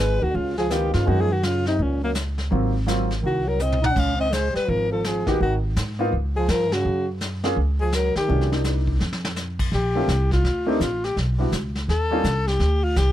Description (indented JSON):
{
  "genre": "jazz, small-group swing and bop",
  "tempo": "167 BPM",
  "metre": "4/4",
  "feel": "swing 63% on 8ths",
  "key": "unclear",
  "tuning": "A4 = 445 Hz",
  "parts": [
    { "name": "breathy alto saxophone", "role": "melody", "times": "0.0-13.1 s", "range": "Bb3 to Gb5", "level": "-24 LUFS", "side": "left 2 dB", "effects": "none" },
    { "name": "warm trombone", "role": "second line", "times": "0.0-8.5 s", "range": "Gb2 to Eb4", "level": "-28 LUFS", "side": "right 3 dB", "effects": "none" },
    { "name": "upright bass", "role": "bass", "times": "0.0-13.1 s", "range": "Ab1 to Ab2", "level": "-23 LUFS", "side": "equal", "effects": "none" },
    { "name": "vintage brush drum kit", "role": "drums", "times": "0.3-13.1 s", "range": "brushed snare drum, crash cymbal, hi-hat, kick drum, snare drum, toms", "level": "-29 LUFS", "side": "equal", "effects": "none" },
    { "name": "warm baby grand piano", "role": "accompaniment", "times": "0.7-3.1, 5.3-12.2 s", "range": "Gb3 to Ab4", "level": "-25 LUFS", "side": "equal", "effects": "none" }
  ],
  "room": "little or no reverb",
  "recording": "close, detailed microphones",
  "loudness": "-20 LUFS",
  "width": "side -12 dB against mid",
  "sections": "0.0-9.7 A section; 9.7-13.1 B section",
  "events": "drum fill 3.6-4.0, 9.0-9.4; alto saxophone solo 9.7-13.1",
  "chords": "0.3 Db13; 1.1 Gb69; 2.5 Ab13; 4.0 Db5; 5.4 Abmadd9; 6.1 Db; 6.8 Gb5; 8.3 Cm7; 9.0 N.C.; 9.7 Bbmaj9; 11.2 Em7; 11.9 Eb9; 12.6 Dm7"
}